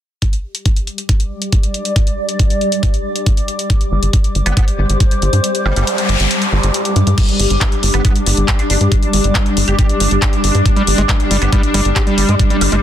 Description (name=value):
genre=psychedelic trance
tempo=138 BPM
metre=4/4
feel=straight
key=unclear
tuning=A4 = 443 Hz
part: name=drum and bass drum kit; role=drums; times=0.2-12.8 s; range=crash cymbal, handclaps, hi-hat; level=-20 LUFS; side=left 2 dB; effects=none
part: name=electronic kick drum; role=drums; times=0.2-12.5 s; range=none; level=-14 LUFS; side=equal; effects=none
part: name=granular cloud pad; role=texture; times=1.0-12.8 s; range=G3 to D6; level=-19 LUFS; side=left 1 dB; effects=built-in reverb, sidechain pumping
part: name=tight sequencer bass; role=bass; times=3.9-12.8 s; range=G1 to G2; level=-15 LUFS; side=equal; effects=none
part: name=metallic wobble bass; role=second line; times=4.5-12.8 s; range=G3 to G4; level=-26 LUFS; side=right 3 dB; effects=ensemble chorus, sidechain pumping, high-pass filter, ping-pong delay
part: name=noise sweep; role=sound effects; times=5.6-7.2 s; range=none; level=-20 LUFS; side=right 1 dB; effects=none
part: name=pulsing gated texture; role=sustained chords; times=7.2-12.8 s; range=G3 to D4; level=-21 LUFS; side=left 1 dB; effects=chorus, built-in reverb, sidechain pumping
part: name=overdriven acid bass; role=riff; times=10.8-12.8 s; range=G3 to G4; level=-19 LUFS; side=right 2 dB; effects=distortion, auto-pan, cassette tape, sidechain pumping, ping-pong delay
room=digital ambience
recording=dense, heavily limited modern master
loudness=-12 LUFS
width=side -11 dB against mid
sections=0.2-7.2 A section; 7.2-12.8 B section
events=kick drops out 5.4-7.2; noise sweep 5.6-7.2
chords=0.2 G5